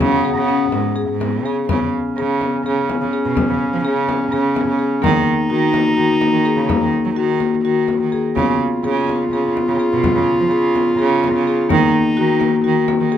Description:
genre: contemporary instrumental, chamber music in an uneven meter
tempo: 252 BPM (eighths)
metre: 7/8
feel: straight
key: Db mixolydian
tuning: A4 = 440 Hz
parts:
  - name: dark clarinet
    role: second line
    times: 0.0-13.1 s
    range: Cb4 to F4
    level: -20 LUFS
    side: equal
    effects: none
  - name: marimba with soft mallets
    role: arpeggios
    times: 0.0-13.2 s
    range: Bb3 to Ab4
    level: -19 LUFS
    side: left 4 dB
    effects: none
  - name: clear cello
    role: bass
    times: 0.0-13.1 s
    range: Ab2 to Gb3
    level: -20 LUFS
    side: right 6 dB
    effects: none
  - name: frame drum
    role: percussion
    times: 0.0-13.1 s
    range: none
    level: -26 LUFS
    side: left 3 dB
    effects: none
room: moderate recital hall reverb, RT60 1.5 s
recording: close, detailed microphones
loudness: -15 LUFS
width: side -10 dB against mid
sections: 0.0-1.7 A section; 1.7-13.2 B section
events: none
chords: 0.0 Db5; 1.7 Db7(no3); 5.0 Ebm; 8.4 Db7; 11.7 Ebm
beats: | 0.01 0.25 0.49 0.73 0.97 1.21 1.46 | 1.70 1.94 2.18 2.42 2.66 2.90 3.14 | 3.38 3.61 3.85 4.09 4.33 4.57 4.80 | 5.04 5.28 5.51 5.75 5.98 6.22 6.46 | 6.70 6.93 7.17 7.41 7.65 7.89 8.13 | 8.37 8.61 8.85 9.09 9.33 9.57 9.81 | 10.04 10.28 10.52 10.75 10.99 11.23 11.47 | 11.70 11.94 12.17 12.41 12.64 12.88 13.12

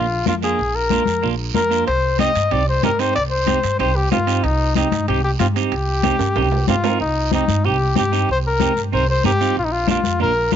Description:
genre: latin, cumbia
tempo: 187 BPM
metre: 4/4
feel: straight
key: C minor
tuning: A4 = 441 Hz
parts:
  - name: mellow trumpet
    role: melody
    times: 0.0-10.6 s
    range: Eb4 to Eb5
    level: -20 LUFS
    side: left 3 dB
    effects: none
  - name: clean electric guitar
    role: accompaniment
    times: 0.0-10.6 s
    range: Bb3 to Bb4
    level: -24 LUFS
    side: right 15 dB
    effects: none
  - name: upright bass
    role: bass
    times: 0.0-10.6 s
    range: Bb1 to G2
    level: -22 LUFS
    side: right 1 dB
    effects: none
  - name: congas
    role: percussion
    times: 0.3-10.6 s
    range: none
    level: -24 LUFS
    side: left 10 dB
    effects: none
  - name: guiro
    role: percussion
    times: 0.3-10.6 s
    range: none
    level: -33 LUFS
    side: right 16 dB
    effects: none
  - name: timbales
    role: percussion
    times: 1.9-6.9 s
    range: none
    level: -28 LUFS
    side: right 13 dB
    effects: none
room: small room ambience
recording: 1960s-style stereo with parts hard left and right, nothing above 7.6 kHz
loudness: -16 LUFS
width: side -9 dB against mid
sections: 0.0-7.0 A section; 7.0-10.6 A section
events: drum fill 6.2-7.0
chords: 0.0 Bb; 1.9 Cm; 9.6 Bb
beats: 0.27 | 0.59 0.91 1.23 1.55 | 1.87 2.19 2.51 2.83 | 3.15 3.48 3.80 4.12 | 4.44 4.76 5.08 5.40 | 5.72 6.04 6.37 6.68 | 7.01 7.33 7.65 7.97 | 8.29 8.61 8.93 9.25 | 9.57 9.89 10.21 10.53

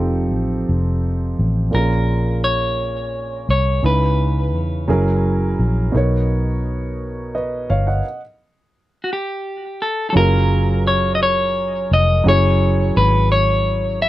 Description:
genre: slow six-eight R&B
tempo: 57 BPM (dotted quarters)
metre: 6/8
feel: straight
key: F# major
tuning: A4 = 439 Hz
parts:
  - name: warm concert grand piano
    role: accompaniment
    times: 0.0-14.1 s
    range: A#2 to F#5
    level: -22 LUFS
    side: right 2 dB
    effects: none
  - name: vintage muted fingered electric bass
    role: bass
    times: 0.0-14.1 s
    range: F1 to E2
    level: -18 LUFS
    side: equal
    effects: none
  - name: clean electric guitar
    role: melody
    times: 1.7-4.6, 9.0-14.1 s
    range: F#4 to E5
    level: -19 LUFS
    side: left 1 dB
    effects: none
room: little or no reverb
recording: dry, close 1970s-style studio recording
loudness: -16 LUFS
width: side -15 dB against mid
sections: 0.0-10.1 A section; 10.1-14.1 B section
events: stop 8.0-10.1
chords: 0.0 F7; 1.7 A#m7; 3.8 C#m7; 4.9 F#7; 5.9 Bmaj7; 8.0 N.C.; 10.1 F#maj7; 12.2 F#5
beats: 0.67 | 1.72 2.77 | 3.82 4.88 | 5.93 6.98 | 8.04 9.09 | 10.14 11.19 | 12.24 13.30

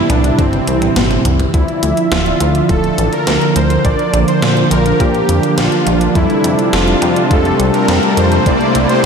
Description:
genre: synthwave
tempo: 104 BPM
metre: 4/4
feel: straight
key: unclear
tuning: A4 = 440 Hz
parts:
  - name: soft supersaw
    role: melody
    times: 0.0-9.1 s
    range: C4 to D5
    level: -17 LUFS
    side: equal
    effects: diffuse ambient delay
  - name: warm analog pad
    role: sustained chords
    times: 0.0-9.1 s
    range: C3 to E5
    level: -16 LUFS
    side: right 2 dB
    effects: chorus, sidechain pumping
  - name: chorused synth bass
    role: bass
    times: 0.0-8.9 s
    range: D1 to Bb2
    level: -16 LUFS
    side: equal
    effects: none
  - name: gated 80s digital drum machine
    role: drums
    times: 0.1-9.0 s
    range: hi-hat, snare drum, toms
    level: -20 LUFS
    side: equal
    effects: gated reverb, gated reverb snare, overdrive, high-pass filter on hats, high-pass filter on snare, high-pass filter on toms, high-pass filter on room
  - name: electronic kick drum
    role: drums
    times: 0.4-8.6 s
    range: none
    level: -16 LUFS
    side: equal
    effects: overdrive
  - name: mellow synth brass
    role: stabs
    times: 1.5-9.1 s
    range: F3 to A5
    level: -19 LUFS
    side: equal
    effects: chorus, cassette tape, diffuse ambient delay
  - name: riser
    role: sound effects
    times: 5.5-9.1 s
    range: none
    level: -23 LUFS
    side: equal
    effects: none
room: wet cathedral reverb, RT60 5.3 s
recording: dreamy mix soaked in reverb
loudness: -11 LUFS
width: side -6 dB against mid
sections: 0.0-1.5 A section; 1.5-9.1 B section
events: drum fill 0.4-1.5; filter sweep on analog polysynth 1.5-9.1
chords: 0.0 C; 1.5 Dmadd9; 3.8 Bb; 6.2 Fadd9; 8.5 C6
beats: 0.39 0.96 | 1.54 2.12 2.69 3.27 | 3.85 4.42 5.00 5.58 | 6.16 6.73 7.31 7.88 | 8.46 9.04

